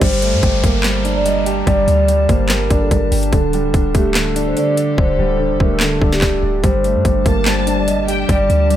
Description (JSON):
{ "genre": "hip hop, trap", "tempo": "145 BPM", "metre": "4/4", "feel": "half-time", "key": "G minor", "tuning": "A4 = 440 Hz", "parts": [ { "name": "vibraphone with soft mallets", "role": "melody", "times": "0.0-8.8 s", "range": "G4 to Eb5", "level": "-19 LUFS", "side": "right 2 dB", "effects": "none" }, { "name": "dark baby grand piano", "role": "accompaniment", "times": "0.0-8.8 s", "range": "D3 to D5", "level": "-20 LUFS", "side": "left 1 dB", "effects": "none" }, { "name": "warbly tape-like pad", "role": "sustained chords", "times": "0.8-8.8 s", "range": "D3 to Bb5", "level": "-25 LUFS", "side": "left 1 dB", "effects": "chorus, built-in reverb, phaser" }, { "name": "clean 808-style bass", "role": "bass", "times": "0.0-8.8 s", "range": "D1 to G2", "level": "-19 LUFS", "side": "equal", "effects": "none" }, { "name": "trap drum kit", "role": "drums", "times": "0.0-8.8 s", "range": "crash cymbal, handclaps, hi-hat, kick drum, snare drum", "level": "-18 LUFS", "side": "equal", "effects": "overdrive" }, { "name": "downlifter", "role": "sound effects", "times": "0.0-3.3 s", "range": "none", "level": "-27 LUFS", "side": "equal", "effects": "none" }, { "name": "warm symphonic violin section", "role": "second line", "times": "7.3-8.3 s", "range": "G5 to A5", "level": "-24 LUFS", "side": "equal", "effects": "digital delay" } ], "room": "digital ambience", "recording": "none", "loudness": "-13 LUFS", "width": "side -11 dB against mid", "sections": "0.0-8.8 A section", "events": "hi-hats muted 5.0-6.6", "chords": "0.0 Gmadd9; 3.3 Dsus4; 6.6 Gmadd9" }